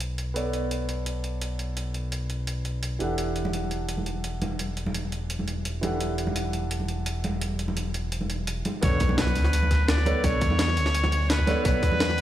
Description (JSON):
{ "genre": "liquid drum and bass", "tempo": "170 BPM", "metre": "4/4", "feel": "straight", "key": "B minor", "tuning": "A4 = 442 Hz", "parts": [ { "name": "felt-muted upright piano", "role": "accompaniment", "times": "0.0-12.2 s", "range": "E3 to F#5", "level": "-32 LUFS", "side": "right 1 dB", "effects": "ping-pong delay" }, { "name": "smooth gliding synth bass", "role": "bass", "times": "0.0-12.2 s", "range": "E1 to E2", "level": "-28 LUFS", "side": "equal", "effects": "none" }, { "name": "jungle sampler-style drum kit", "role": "drums", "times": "0.0-12.2 s", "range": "hi-hat, snare drum", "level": "-32 LUFS", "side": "equal", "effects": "none" }, { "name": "congas", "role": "percussion", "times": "3.4-12.0 s", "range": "none", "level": "-33 LUFS", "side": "right 1 dB", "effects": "none" }, { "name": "trumpet with straight mute", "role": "melody", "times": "8.8-12.2 s", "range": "B4 to D5", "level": "-28 LUFS", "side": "equal", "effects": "ping-pong delay" }, { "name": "crunchy breakbeat drum kit", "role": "drums", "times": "8.8-12.2 s", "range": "hi-hat, snare drum", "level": "-36 LUFS", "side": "left 1 dB", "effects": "high-pass filter on hats, high-pass filter on snare, high-pass filter on room" }, { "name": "electronic kick drum", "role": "drums", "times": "8.8-11.9 s", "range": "none", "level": "-26 LUFS", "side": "equal", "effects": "overdrive" }, { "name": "impact", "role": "sound effects", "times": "8.8-10.2 s", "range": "none", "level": "-32 LUFS", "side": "equal", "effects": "none" } ], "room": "light reverb, small room ambience", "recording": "played on a big sound system in a bare room, stone room reverb", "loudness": "-24 LUFS", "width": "side -12 dB against mid", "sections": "0.0-8.8 A section; 8.8-12.2 B section", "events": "drop 8.8-12.2; impact 8.8-10.2", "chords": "0.0 Bm9; 3.0 Em11; 8.8 Bm9" }